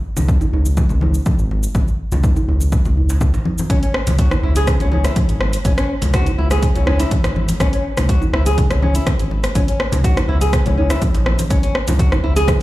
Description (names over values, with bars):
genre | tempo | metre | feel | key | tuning
afro house | 123 BPM | 4/4 | straight | C# dorian | A4 = 440 Hz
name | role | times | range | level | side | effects
round analog bass | bass | 0.2-12.5 s | G#1 to C#2 | -18 LUFS | equal | sidechain pumping
deep house drum kit | drums | 0.2-12.6 s | hi-hat, rim click, shaker | -24 LUFS | equal | overdrive
congas | percussion | 0.2-12.6 s | none | -24 LUFS | left 1 dB | none
djembe | percussion | 0.2-12.3 s | none | -25 LUFS | right 2 dB | none
electronic kick drum | drums | 0.3-12.6 s | none | -18 LUFS | equal | overdrive
nylon-string guitar | arpeggios | 3.7-12.5 s | C#4 to G#4 | -22 LUFS | left 1 dB | sidechain pumping, ping-pong delay
room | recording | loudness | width
light reverb | played on a big sound system in a bare room, large studio reverb | -14 LUFS | side -17 dB against mid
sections
0.0-12.6 A section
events
none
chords
0.0 C#5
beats
0.29 0.77 1.26 | 1.75 2.24 2.73 3.21 | 3.70 4.19 4.68 5.16 | 5.65 6.14 6.63 7.12 | 7.60 8.09 8.58 9.07 | 9.55 10.04 10.53 11.02 | 11.51 11.99 12.48